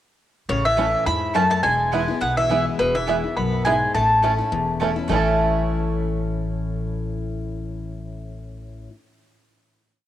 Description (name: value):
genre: bluegrass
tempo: 208 BPM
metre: 4/4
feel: swing 55% on 8ths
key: A major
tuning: A4 = 440 Hz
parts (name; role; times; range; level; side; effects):
- mandolin; melody; 0.5-4.8 s; B4 to B5; -21 LUFS; equal; cassette tape, analog delay
- lap resonator guitar; second line; 0.5-4.8 s; B2 to E4; -30 LUFS; left 5 dB; cassette tape
- picked steel-string acoustic guitar; accompaniment; 0.5-8.9 s; E2 to E4; -26 LUFS; left 4 dB; cassette tape
- upright bass; bass; 0.5-8.9 s; E1 to E2; -28 LUFS; right 1 dB; none
- bluegrass banjo; arpeggios; 0.8-8.9 s; A3 to A4; -27 LUFS; right 7 dB; cassette tape
- mandolin; stabs; 0.8-8.9 s; A3 to A5; -32 LUFS; right 6 dB; cassette tape
room: light reverb, small room ambience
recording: home recording on cassette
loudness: -19 LUFS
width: side -12 dB against mid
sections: 0.5-5.1 A section; 5.1-7.4 final chord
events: none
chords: 0.5 A; 1.6 E; 3.9 A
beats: | 0.49 0.78 1.06 1.35 | 1.64 1.93 2.21 2.50 | 2.79 3.08 3.37 3.65 | 3.94 4.23 4.52 4.81 | 5.09 5.38 5.67 5.96 | 6.25 6.53 6.82 7.11